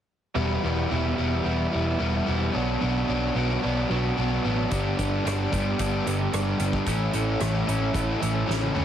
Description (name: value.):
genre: quiet-loud alternative rock.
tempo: 111 BPM.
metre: 4/4.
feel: straight.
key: E dorian.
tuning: A4 = 438 Hz.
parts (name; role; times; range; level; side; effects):
electric guitar through a small old amp; arpeggios; 0.4-8.8 s; E2 to A4; -31 LUFS; right 3 dB; tremolo, tape echo.
overdriven semi-hollow guitar; riff; 0.4-8.8 s; G2 to E4; -26 LUFS; left 1 dB; none.
picked electric bass; bass; 0.4-8.8 s; E1 to D2; -28 LUFS; equal; none.
loose indie drum kit; drums; 4.7-8.8 s; hi-hat, kick drum, rim click, snare drum, toms; -32 LUFS; equal; none.
room: little or no reverb.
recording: heavily compressed radio sound, multiband compression.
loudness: -23 LUFS.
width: side -10 dB against mid.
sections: 0.4-8.8 A section.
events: drum fill 8.5-8.8.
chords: 0.4 Em; 2.5 Bm; 4.7 G; 6.9 A.